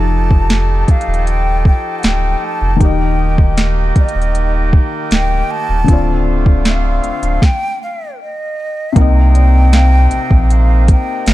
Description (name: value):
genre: contemporary R&B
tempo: 78 BPM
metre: 4/4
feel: straight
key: C dorian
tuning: A4 = 435 Hz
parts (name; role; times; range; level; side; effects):
- breathy hollow jazz flute; melody; 0.0-11.3 s; Eb5 to A5; -21 LUFS; left 1 dB; ping-pong delay
- felt-muted upright piano; accompaniment; 0.0-11.3 s; C3 to Eb5; -21 LUFS; left 6 dB; none
- accordion; sustained chords; 0.0-11.3 s; C3 to A4; -23 LUFS; right 2 dB; stereo widening
- saturated sub bass; bass; 0.0-11.3 s; D1 to C2; -13 LUFS; equal; none
- small celesta; texture; 0.0-4.3, 9.3-11.2 s; Bb4 to F5; -34 LUFS; right 1 dB; none
- smooth R&B drum kit; drums; 0.3-11.3 s; hi-hat, kick drum, snare drum; -12 LUFS; equal; overdrive
room: little or no reverb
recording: dark, warm production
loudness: -11 LUFS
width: side -16 dB against mid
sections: 0.0-9.0 A section; 9.0-11.3 B section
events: stop 7.4-9.0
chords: 0.0 F9; 2.8 Eb; 5.9 Dm7; 8.2 N.C.; 9.0 Cm9